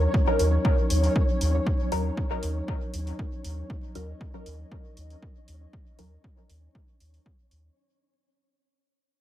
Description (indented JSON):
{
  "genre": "dub techno",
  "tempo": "118 BPM",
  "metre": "4/4",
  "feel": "straight",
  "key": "unclear",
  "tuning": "A4 = 438 Hz",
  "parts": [
    { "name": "dark analog pad", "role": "sustained chords", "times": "0.0-7.7 s", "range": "Gb3 to Eb5", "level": "-33 LUFS", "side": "equal", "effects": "chorus, sidechain pumping" },
    { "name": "filtered dub chord stab", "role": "stabs", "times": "0.0-6.2 s", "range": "Gb3 to Bb4", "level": "-31 LUFS", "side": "left 1 dB", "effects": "chorus, phaser, sidechain pumping, dub echo" },
    { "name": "soft dub sub bass", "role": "bass", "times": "0.0-7.7 s", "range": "Eb2", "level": "-26 LUFS", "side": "equal", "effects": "sidechain pumping" },
    { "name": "flickering grainy texture", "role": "texture", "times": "0.0-7.8 s", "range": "Db4 to Db5", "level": "-36 LUFS", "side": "equal", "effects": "built-in reverb, sidechain pumping" },
    { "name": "electronic kick drum", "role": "drums", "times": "0.1-7.4 s", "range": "none", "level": "-27 LUFS", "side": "equal", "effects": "overdrive, small room ambience" },
    { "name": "electronic hi-hat", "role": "drums", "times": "0.4-7.6 s", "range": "none", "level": "-38 LUFS", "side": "equal", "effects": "overdrive, small room ambience" }
  ],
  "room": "light reverb",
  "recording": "echo-heavy mix, vinyl crackle",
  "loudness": "-23 LUFS",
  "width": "side -13 dB against mid",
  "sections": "0.0-7.8 A section",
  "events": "fade-out 0.0-7.8; filter sweep on synth stab 0.0-7.8",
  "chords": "0.0 Ebm7"
}